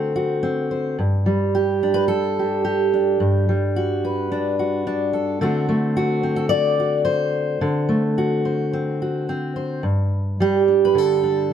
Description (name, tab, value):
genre	folk, solo fingerstyle acoustic guitar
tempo	108 BPM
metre	4/4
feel	straight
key	G major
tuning	A4 = 440 Hz
part	fingerpicked steel-string acoustic guitar	solo	0.0-11.5 s	G2 to D5	-18 LUFS	right 1 dB	none
room	light reverb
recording	none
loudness	-18 LUFS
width	side -8 dB against mid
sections	0.0-9.8 A section; 9.8-11.5 A section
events	none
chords	0.0 D7; 1.0 Gmaj7; 5.4 D7; 9.8 G5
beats	0.43 | 0.99 1.55 2.11 2.67 | 3.22 3.77 4.32 4.87 | 5.42 5.96 6.51 7.07 | 7.62 8.17 8.72 9.28 | 9.84 10.40 10.96 11.51